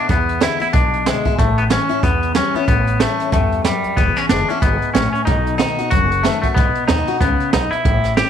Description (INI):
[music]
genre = rockabilly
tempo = 186 BPM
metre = 4/4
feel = swing 60% on 8ths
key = unclear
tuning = A4 = 441 Hz
[part]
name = twangy electric guitar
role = melody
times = 0.0-8.3 s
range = G3 to G4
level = -19 LUFS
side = equal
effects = tape echo
[part]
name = picked steel-string acoustic guitar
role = accompaniment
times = 0.0-8.3 s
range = E2 to F#4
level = -23 LUFS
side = left 9 dB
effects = none
[part]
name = upright bass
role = bass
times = 0.1-8.2 s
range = E1 to E2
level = -21 LUFS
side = equal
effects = none
[part]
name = jazz brush drum kit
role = drums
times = 0.1-8.3 s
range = hi-hat, kick drum, snare drum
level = -19 LUFS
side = right 3 dB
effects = none
[sound]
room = light reverb, small room ambience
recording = 1960s-style stereo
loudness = -14 LUFS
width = side -8 dB against mid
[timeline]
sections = 0.0-8.3 A section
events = none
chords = 0.0 E7; 1.4 A7; 4.0 E7; 5.3 B7